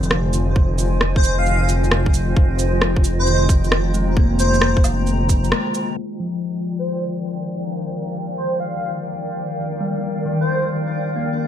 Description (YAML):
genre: future garage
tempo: 133 BPM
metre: 4/4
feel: swing 66% on 16ths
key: unclear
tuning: A4 = 441 Hz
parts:
  - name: bell-like tine electric piano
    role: accompaniment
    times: 0.0-11.5 s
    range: C3 to Bb3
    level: -25 LUFS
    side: left 3 dB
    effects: auto-pan, sidechain pumping, ping-pong delay
  - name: granular cloud pad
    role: sustained chords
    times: 0.0-11.5 s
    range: Eb3 to Bb5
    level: -26 LUFS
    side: equal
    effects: built-in reverb, sidechain pumping
  - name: swelling detuned saw bass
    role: bass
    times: 0.0-5.5 s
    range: F1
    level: -20 LUFS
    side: equal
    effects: sidechain pumping
  - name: electronic shaker, rim click and woodblock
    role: drums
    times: 0.0-5.9 s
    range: none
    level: -22 LUFS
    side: right 1 dB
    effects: none
  - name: electronic kick drum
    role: drums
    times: 0.6-5.4 s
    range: none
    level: -16 LUFS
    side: equal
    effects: none
  - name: airy dreamy lead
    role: melody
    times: 1.2-10.6 s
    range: C5 to F5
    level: -25 LUFS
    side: equal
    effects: chorus, ping-pong delay
room: light reverb, digital ambience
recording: low-pass filter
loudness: -17 LUFS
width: side -10 dB against mid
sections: 0.0-6.0 A section; 6.0-11.5 B section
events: break 5.5-6.0; band accent 5.5; filter sweep 6.0-11.5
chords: 0.0 Fm7; 6.0 Ebmaj7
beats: 0.11 | 0.56 1.01 1.46 1.91 | 2.36 2.81 3.27 3.72 | 4.17 4.62 5.07 5.52 | 5.97 6.42 6.87 7.33 | 7.78 8.23 8.68 9.13 | 9.58 10.03 10.48 10.93 | 11.39